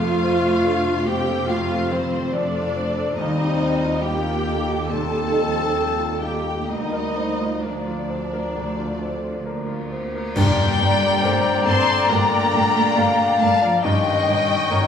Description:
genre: cinematic, emotional film score for orchestra.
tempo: 68 BPM.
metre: 4/4.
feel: uneven beats, rubato.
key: G minor.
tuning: A4 = 440 Hz.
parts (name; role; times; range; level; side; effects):
warm studio violin section; melody; 0.0-14.9 s; C5 to C6; -27 LUFS; left 6 dB; none.
mellow clarinet; second line; 0.0-14.9 s; Eb3 to F5; -26 LUFS; left 3 dB; none.
warm studio violin section; second line; 0.0-14.9 s; C5 to A5; -29 LUFS; left 3 dB; none.
bright grand piano; accompaniment; 0.0-14.9 s; G1 to Db5; -28 LUFS; equal; none.
warm studio viola section; accompaniment; 0.0-14.8 s; Bb3 to A4; -26 LUFS; right 1 dB; none.
warm French horn section; sustained chords; 0.0-14.9 s; Bb2 to A4; -30 LUFS; left 2 dB; none.
dark studio double bass section; bass; 0.0-14.8 s; F1 to G2; -28 LUFS; right 1 dB; none.
rich studio cello section; bass; 0.0-14.9 s; D2 to C4; -28 LUFS; right 2 dB; none.
cymbal swell, clash cymbals and concert bass drum; percussion; 6.7-12.1 s; none; -30 LUFS; left 1 dB; none.
small flute group; second line; 10.4-14.9 s; Bb5 to Db6; -24 LUFS; left 4 dB; none.
warm oboe; second line; 10.4-14.9 s; D5 to Eb5; -28 LUFS; right 1 dB; none.
timpani; percussion; 10.4-11.6 s; G2; -28 LUFS; equal; none.
room: wet recital hall reverb, RT60 1.6 s.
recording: heard from further back in the room, small room ambience.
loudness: -18 LUFS.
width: side -8 dB against mid.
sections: 0.0-10.4 A section; 10.4-14.9 B section.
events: band accent 10.4-11.2.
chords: 0.0 F; 3.2 Ebadd9; 6.7 Bbadd9/D; 10.4 Gmadd9; 13.8 Eb7/G.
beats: 0.64 1.49 2.32 | 3.17 4.02 4.88 5.77 | 6.69 7.63 8.55 9.46 | 10.36 11.23 12.09 12.96 | 13.83 14.68.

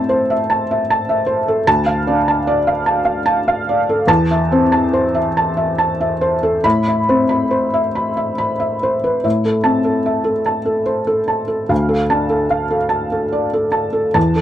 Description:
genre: neoclassical minimalist piano.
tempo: 67-77 BPM.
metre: 3/4.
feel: rubato.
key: A minor.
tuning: A4 = 440 Hz.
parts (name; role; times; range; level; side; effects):
felt-muted upright piano; solo; 0.0-14.4 s; D2 to B5; -14 LUFS; equal; none.
room: little or no reverb.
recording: dry, close 1970s-style studio recording.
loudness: -14 LUFS.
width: side -11 dB against mid.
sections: 0.0-9.2 A section; 9.2-14.4 A section.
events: none.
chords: 0.0 Am; 1.7 Dm; 4.1 Am/E; 6.6 Amadd9; 9.2 Am; 11.7 Dm.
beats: 0.09 0.88 | 1.67 2.46 3.26 | 4.08 4.91 5.77 | 6.64 7.52 8.39 | 9.25 10.07 10.89 | 11.71 12.53 13.34 | 14.16.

